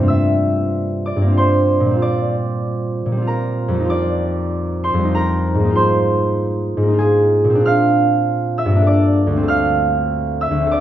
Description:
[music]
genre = classical, solo harp piece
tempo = 96 BPM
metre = 3/4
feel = rubato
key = G dorian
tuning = A4 = 440 Hz
[part]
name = concert harp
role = solo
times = 0.0-10.8 s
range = F1 to F6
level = -15 LUFS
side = equal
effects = none
[sound]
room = moderate recital hall reverb, RT60 1.6 s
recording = close, detailed microphones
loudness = -15 LUFS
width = side -11 dB against mid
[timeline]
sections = 0.1-10.8 A section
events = none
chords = 0.1 Gm11; 2.0 Bb69; 3.9 F9sus4; 5.8 Ab69; 7.6 Bbadd9; 8.9 Gmadd9; 9.5 Dm7

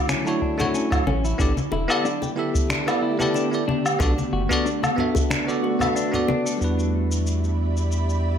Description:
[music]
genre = sunset chillout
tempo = 92 BPM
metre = 4/4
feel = swing 54% on 16ths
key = E dorian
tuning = A4 = 439 Hz
[part]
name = bell-like tine electric piano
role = accompaniment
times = 0.0-8.4 s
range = D3 to D6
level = -25 LUFS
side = equal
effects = auto-pan, tape echo
[part]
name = ethereal airy pad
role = sustained chords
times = 0.0-8.4 s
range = D3 to B5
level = -28 LUFS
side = equal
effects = ensemble chorus, built-in reverb
[part]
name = clean electric guitar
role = arpeggios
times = 0.1-6.6 s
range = C#4 to D5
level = -29 LUFS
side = left 3 dB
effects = spring reverb, tape echo
[part]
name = electronic finger snaps, shaker and woodblock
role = drums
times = 0.1-8.2 s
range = none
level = -28 LUFS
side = equal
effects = none
[part]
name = congas and bongos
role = percussion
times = 0.1-6.4 s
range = none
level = -30 LUFS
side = left 2 dB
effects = none
[part]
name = electronic kick drum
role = drums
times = 0.4-5.3 s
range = none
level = -25 LUFS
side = right 1 dB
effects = none
[part]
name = round analog bass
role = bass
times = 1.1-8.4 s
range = E1 to E2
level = -23 LUFS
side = right 1 dB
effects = none
[sound]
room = moderate digital room reverb, RT60 1.1 s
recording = none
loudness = -20 LUFS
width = side -8 dB against mid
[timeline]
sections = 0.0-6.6 A section; 6.6-8.4 B section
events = kick drops out 5.3-6.6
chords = 0.0 Dmaj9; 1.4 A9sus4; 4.0 Bm7; 6.6 Em7

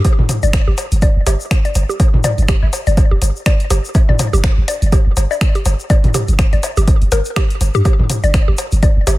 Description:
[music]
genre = minimal techno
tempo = 123 BPM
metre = 4/4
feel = swing 58% on 16ths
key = unclear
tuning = A4 = 441 Hz
[part]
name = mallet-like synth pluck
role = riff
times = 0.0-9.2 s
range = G4 to D5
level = -22 LUFS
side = left 1 dB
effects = chorus, sidechain pumping, digital delay
[part]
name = electronic kick drum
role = drums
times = 0.0-8.9 s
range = none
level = -13 LUFS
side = equal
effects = none
[part]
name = punchy analog drum machine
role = drums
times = 0.0-9.2 s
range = finger snaps, hi-hat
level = -25 LUFS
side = equal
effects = none
[part]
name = electronic woodblock and toms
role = percussion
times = 0.0-9.2 s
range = none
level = -23 LUFS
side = left 1 dB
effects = digital delay
[part]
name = egg shaker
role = percussion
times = 0.1-9.2 s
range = none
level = -28 LUFS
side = left 3 dB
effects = none
[part]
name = punchy sub bass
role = bass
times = 0.2-9.2 s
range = F1 to G2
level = -15 LUFS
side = equal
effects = sidechain pumping
[sound]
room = little or no reverb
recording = none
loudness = -12 LUFS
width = side -18 dB against mid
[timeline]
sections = 0.0-9.2 A section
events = none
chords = 0.0 G5

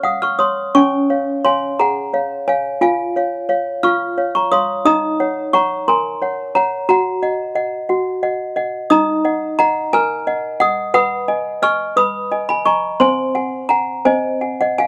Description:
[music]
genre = classical, lullaby for toy piano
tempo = 59 BPM (dotted quarters)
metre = 6/8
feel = rubato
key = Db major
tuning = A4 = 440 Hz
[part]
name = toy piano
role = solo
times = 0.0-14.9 s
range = B#3 to F6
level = -17 LUFS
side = equal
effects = none
[sound]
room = studio ambience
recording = dry, close 1970s-style studio recording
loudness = -17 LUFS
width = mono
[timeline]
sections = 0.7-14.9 A section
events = none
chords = 0.0 Db; 2.8 Db/F; 4.9 Ebm7; 6.9 Ebm/Gb; 8.9 D#m; 10.9 G#m7/B; 13.0 G#7/B#

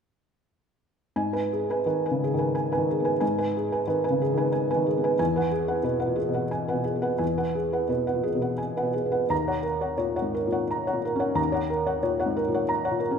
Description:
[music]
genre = neoclassical minimalist piano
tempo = 85-92 BPM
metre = 3/4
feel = rubato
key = G# minor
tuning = A4 = 441 Hz
[part]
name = felt-muted upright piano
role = solo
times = 1.2-13.2 s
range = D#2 to A#5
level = -23 LUFS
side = equal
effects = none
[sound]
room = wet recital hall reverb, RT60 1.6 s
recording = recorded in a church or concert hall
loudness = -23 LUFS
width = side -6 dB against mid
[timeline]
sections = 1.2-13.2 A section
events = none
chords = 1.2 G#m; 5.2 Eadd9; 9.3 D#m7

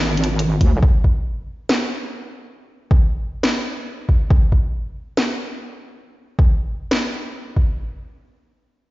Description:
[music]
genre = deep dubstep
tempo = 138 BPM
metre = 4/4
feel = swing 58% on 16ths, half-time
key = G# minor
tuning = A4 = 441 Hz
[part]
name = wobble bass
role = bass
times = 0.0-0.8 s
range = G#1 to D#2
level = -18 LUFS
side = equal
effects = chorus
[part]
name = garage drum kit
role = drums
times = 0.2-7.0 s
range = hi-hat, snare drum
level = -22 LUFS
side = equal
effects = none
[part]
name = electronic kick drum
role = drums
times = 0.6-7.7 s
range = none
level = -15 LUFS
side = equal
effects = overdrive
[sound]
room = light reverb, digital ambience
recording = played on a big sound system in a bare room, large studio reverb, nothing above 7.5 kHz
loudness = -17 LUFS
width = side -19 dB against mid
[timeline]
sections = 0.0-7.8 A section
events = none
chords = none

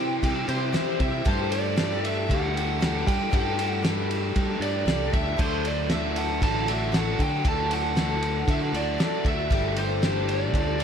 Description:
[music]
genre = folk rock and heartland rock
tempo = 117 BPM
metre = 4/4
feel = straight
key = unclear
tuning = A4 = 440 Hz
[part]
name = lead guitar through a small cranked amp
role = melody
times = 0.0-10.8 s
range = C5 to A5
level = -30 LUFS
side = right 1 dB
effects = overdrive, slapback echo, tape echo
[part]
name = picked twelve-string acoustic guitar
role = accompaniment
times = 0.0-10.8 s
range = C3 to C5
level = -32 LUFS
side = left 4 dB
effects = slapback echo
[part]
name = overdriven electric guitar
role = riff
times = 0.0-10.8 s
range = C3 to G4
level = -31 LUFS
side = equal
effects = slapback echo
[part]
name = fingered electric bass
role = bass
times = 0.0-10.8 s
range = G1 to G3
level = -30 LUFS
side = equal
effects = none
[part]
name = cloth-damped thuddy drum kit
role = drums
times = 0.2-10.8 s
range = crash cymbal, kick drum, ride cymbal, snare drum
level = -27 LUFS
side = equal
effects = none
[sound]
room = light reverb, small room ambience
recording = none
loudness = -22 LUFS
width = side -7 dB against mid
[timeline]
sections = 0.0-10.8 A section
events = none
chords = 0.0 C; 1.3 Gsus2; 5.4 D; 9.5 Gsus2

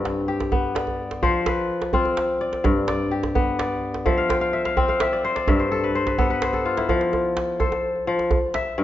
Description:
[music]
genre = west african traditional, West African string and xylophone music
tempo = 85 BPM (dotted quarters)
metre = 12/8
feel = straight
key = F lydian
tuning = A4 = 440 Hz
[part]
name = kora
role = arpeggios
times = 0.0-8.8 s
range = G2 to G5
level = -21 LUFS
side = left 2 dB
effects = none
[part]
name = djembe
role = percussion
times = 0.1-8.7 s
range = none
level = -26 LUFS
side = right 3 dB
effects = none
[sound]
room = moderate recital hall reverb, RT60 1.4 s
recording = dark, warm production, nothing above 7.6 kHz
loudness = -20 LUFS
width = side -12 dB against mid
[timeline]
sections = 0.0-6.9 A section; 6.9-8.8 B section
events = kora fill 4.1-6.9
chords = 0.0 G; 1.2 F5; 2.6 G; 4.1 F5; 5.5 G; 6.9 F; 8.3 N.C.

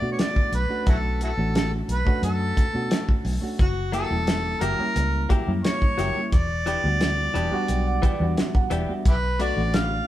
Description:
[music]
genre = straight-eighth soul blues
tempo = 88 BPM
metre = 4/4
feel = straight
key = B minor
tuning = A4 = 440 Hz
[part]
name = mellow harmonica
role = melody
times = 0.0-10.1 s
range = E4 to E#5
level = -28 LUFS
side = equal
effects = overdrive, analog delay
[part]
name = barky reed electric piano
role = accompaniment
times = 0.0-10.1 s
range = G3 to A5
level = -30 LUFS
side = right 2 dB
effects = overdrive, fast tremolo
[part]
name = vintage muted fingered electric bass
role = bass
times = 0.0-10.0 s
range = E1 to B2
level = -26 LUFS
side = equal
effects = none
[part]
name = cloth-damped thuddy drum kit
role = drums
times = 0.2-9.9 s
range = hi-hat, kick drum, snare drum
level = -23 LUFS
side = equal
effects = none
[part]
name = direct-recorded clean electric guitar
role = stabs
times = 3.9-9.6 s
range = B2 to G4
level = -30 LUFS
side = left 3 dB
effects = none
[sound]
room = moderate stone room reverb, RT60 1.0 s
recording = band playing live in one room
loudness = -21 LUFS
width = side -13 dB against mid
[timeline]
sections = 0.0-10.1 A section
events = reed electric piano fill 7.0-9.1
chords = 0.0 Bm7; 3.6 F#7b9; 6.3 Em7; 9.1 Bm7

